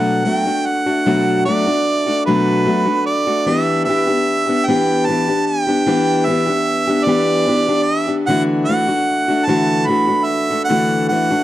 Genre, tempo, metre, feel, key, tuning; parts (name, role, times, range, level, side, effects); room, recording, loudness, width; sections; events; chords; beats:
rock; 50 BPM (dotted quarters); 6/8; straight; A4 = 441 Hz
clear harmonica; melody; 0.0-11.4 s; B4 to B5; -18 LUFS; right 3 dB
picked steel-string acoustic guitar; accompaniment; 0.0-11.4 s; B2 to G4; -16 LUFS; left 2 dB
light reverb, small room reverb; dry, close 1970s-style studio recording; -14 LUFS; side -14 dB against mid
0.0-11.4 A section
0.0 Bm7; 3.5 Em7; 8.3 Dadd9
| 1.07 2.27 | 3.48 4.68 | 5.89 7.09 | 8.30 9.50 | 10.71